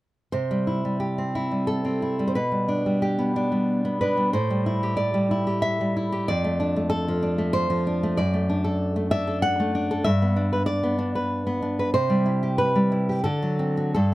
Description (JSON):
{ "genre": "romantic piece for solo classical guitar", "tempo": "84-98 BPM", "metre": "3/4", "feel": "rubato", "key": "C major", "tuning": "A4 = 440 Hz", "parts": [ { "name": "nylon-string guitar", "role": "solo", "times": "0.3-14.1 s", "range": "F2 to F#5", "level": "-21 LUFS", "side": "equal", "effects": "none" } ], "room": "little or no reverb", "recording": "close, detailed microphones", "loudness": "-21 LUFS", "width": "side -17 dB against mid", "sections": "0.3-14.1 A section", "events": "none", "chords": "0.3 C; 2.4 G/B; 4.3 Am7; 6.3 Dm/F; 8.2 D/F#; 10.1 G; 12.0 C; 13.3 D7", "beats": "| 0.34 1.02 1.70 | 2.36 3.03 3.69 | 4.34 4.99 5.64 | 6.30 6.94 7.57 | 8.19 8.81 9.44 | 10.07 10.69 11.31 | 11.96 12.61 13.27 | 13.96" }